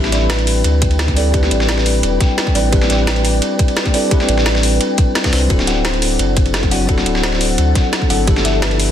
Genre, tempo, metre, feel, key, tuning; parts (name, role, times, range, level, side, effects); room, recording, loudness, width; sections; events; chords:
liquid drum and bass; 173 BPM; 4/4; straight; A minor; A4 = 440 Hz
bell-like tine electric piano; accompaniment; 0.0-8.9 s; F3 to B4; -20 LUFS; left 2 dB; ping-pong delay
glassy FM pad; sustained chords; 0.0-8.9 s; A4 to B5; -25 LUFS; left 2 dB; ensemble chorus, built-in reverb, phaser, sidechain pumping
buzzing kalimba; arpeggios; 0.0-8.8 s; F#4 to F#5; -22 LUFS; equal; ping-pong delay
warm sub bass; bass; 0.0-8.9 s; D1 to D2; -17 LUFS; equal; tube saturation
drum and bass drum kit; drums; 0.0-8.9 s; hi-hat, snare drum; -21 LUFS; equal
dusty soul sampler-style drum kit; drums; 0.0-8.9 s; ride cymbal, snare drum; -23 LUFS; right 1 dB; high-pass filter on cymbals, high-pass filter on snare, high-pass filter on room
electronic kick drum; drums; 0.8-8.3 s; -16 LUFS; equal
light reverb; dense, heavily limited modern master; -12 LUFS; side -10 dB against mid
0.0-8.9 A section
0.0 Am11; 5.5 D7; 8.3 G13